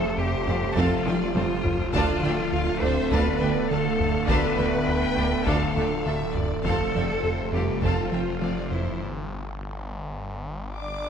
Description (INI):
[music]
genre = cinematic, hybrid orchestral and electronic film score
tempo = 102 BPM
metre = 4/4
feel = straight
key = D dorian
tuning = A4 = 445 Hz
[part]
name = rich studio violin section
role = melody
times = 0.0-11.1 s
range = A4 to D6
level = -35 LUFS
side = left 4 dB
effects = none
[part]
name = dark French horn section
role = sustained chords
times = 0.0-11.1 s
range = E3 to D5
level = -33 LUFS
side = left 2 dB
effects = none
[part]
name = glassy FM pad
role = sustained chords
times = 0.0-9.0 s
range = C3 to A4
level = -33 LUFS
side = left 3 dB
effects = ensemble chorus, built-in reverb
[part]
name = warm trombone section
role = sustained chords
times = 0.0-9.0 s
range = C3 to A3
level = -32 LUFS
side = right 4 dB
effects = none
[part]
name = rubbery square bass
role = riff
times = 0.0-8.9 s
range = D2 to F3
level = -29 LUFS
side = right 1 dB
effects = none
[part]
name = rich studio cello section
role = bass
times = 0.0-11.1 s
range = D4 to C5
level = -30 LUFS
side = right 1 dB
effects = none
[part]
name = snarling distorted saw bass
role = bass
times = 0.0-11.1 s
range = D1 to G1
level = -34 LUFS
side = left 1 dB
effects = distortion
[part]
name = rich studio violin section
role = second line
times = 0.5-8.5 s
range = C5 to A5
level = -34 LUFS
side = left 3 dB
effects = none
[part]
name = rich symphonic viola section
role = accompaniment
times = 0.5-8.5 s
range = C4 to A4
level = -34 LUFS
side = right 1 dB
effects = none
[part]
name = mellow tuba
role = bass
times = 0.5-8.5 s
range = F1 to D2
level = -34 LUFS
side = right 4 dB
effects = none
[part]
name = rich symphonic double bass section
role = bass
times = 0.5-8.5 s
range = D2 to F2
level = -33 LUFS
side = right 2 dB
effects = none
[part]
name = taiko ensemble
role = drums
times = 0.8-8.4 s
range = none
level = -32 LUFS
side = left 1 dB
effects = none
[sound]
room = wet concert hall reverb, RT60 1.8 s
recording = none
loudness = -22 LUFS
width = side -7 dB against mid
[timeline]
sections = 0.0-11.1 A section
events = drum fill 1.1-1.9; break 9.0-11.1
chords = 0.0 F; 1.9 Dm; 6.6 F; 9.0 G5